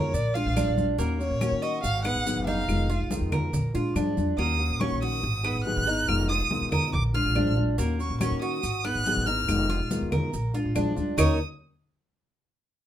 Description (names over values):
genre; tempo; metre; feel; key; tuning
latin, Cuban son and guajira; 141 BPM; 4/4; straight; Eb minor; A4 = 440 Hz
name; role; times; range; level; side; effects
warm violin; melody; 0.0-11.4 s; Db5 to Gb6; -29 LUFS; right 1 dB; none
nylon-string guitar; accompaniment; 0.0-11.4 s; Cb3 to Ab4; -30 LUFS; left 2 dB; none
Cuban tres; arpeggios; 0.0-11.4 s; Bb3 to Db5; -32 LUFS; right 4 dB; none
upright bass; bass; 0.0-11.4 s; F1 to Eb3; -28 LUFS; equal; none
congas; percussion; 0.1-11.3 s; none; -31 LUFS; left 1 dB; none
maracas; percussion; 0.1-4.4, 7.8-11.3 s; none; -42 LUFS; right 5 dB; none
claves; percussion; 0.6-11.3 s; none; -36 LUFS; left 4 dB; none
room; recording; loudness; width
light reverb; minimal, uncompressed stereo recording; -24 LUFS; side -11 dB against mid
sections
0.0-4.4 A section; 4.4-11.2 B section; 11.2-12.9 C section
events
none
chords
0.1 Bb7; 1.0 Ebm7; 1.8 Abm7; 2.7 Fm7b5; 3.5 Bb7; 4.4 Ebm7; 5.2 Abm7; 6.1 Fm7b5; 6.9 Bb7; 7.8 Ebm7; 8.6 Abm7; 9.5 Fm7b5; 10.3 Bb7; 11.2 Eb7(no3)